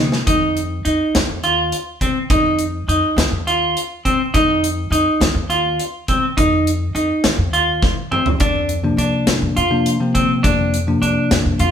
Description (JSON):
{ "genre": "progressive instrumental, band music in an uneven meter", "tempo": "206 BPM (eighths)", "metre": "7/8", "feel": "straight", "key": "unclear", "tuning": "A4 = 440 Hz", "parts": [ { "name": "bell-like tine electric piano", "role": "accompaniment", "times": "0.0-0.2, 8.8-11.6 s", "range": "C3 to D4", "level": "-18 LUFS", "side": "left 1 dB", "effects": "none" }, { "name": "upright bass", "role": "bass", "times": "0.0-11.7 s", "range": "Eb2 to D3", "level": "-22 LUFS", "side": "equal", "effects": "none" }, { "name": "big rock drum kit", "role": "drums", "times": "0.1-11.7 s", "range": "hi-hat, kick drum, snare drum, toms", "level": "-20 LUFS", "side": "equal", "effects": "none" }, { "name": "clean electric guitar", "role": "arpeggios", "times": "0.3-11.7 s", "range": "C4 to F4", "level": "-18 LUFS", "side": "equal", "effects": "none" } ], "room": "moderate stone room reverb, RT60 1.1 s", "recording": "band playing live in one room", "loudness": "-15 LUFS", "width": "side -8 dB against mid", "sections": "0.3-11.7 A section", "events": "drum fill 0.0, 7.8-8.4", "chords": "0.3 F5; 8.4 Bbadd9/F" }